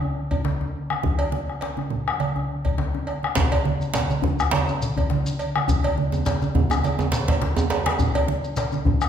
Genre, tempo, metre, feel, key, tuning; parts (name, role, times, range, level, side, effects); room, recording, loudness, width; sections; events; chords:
west african traditional, West African drum ensemble; 103 BPM; 4/4; swing 55% on 16ths
djembe; percussion; 0.0-9.0 s; -27 LUFS; left 3 dB
bombo; percussion; 0.3-9.1 s; -26 LUFS; equal
congas; percussion; 0.3-9.0 s; -27 LUFS; right 3 dB
cowbell; percussion; 0.3-8.7 s; -30 LUFS; right 3 dB
djembe; percussion; 3.4-8.0 s; -25 LUFS; right 3 dB
shekere; percussion; 3.4-9.1 s; -31 LUFS; left 2 dB
wet recital hall reverb, RT60 1.6 s; recorded in a church or concert hall; -21 LUFS; side -8 dB against mid
0.0-3.4 A section; 3.4-9.1 B section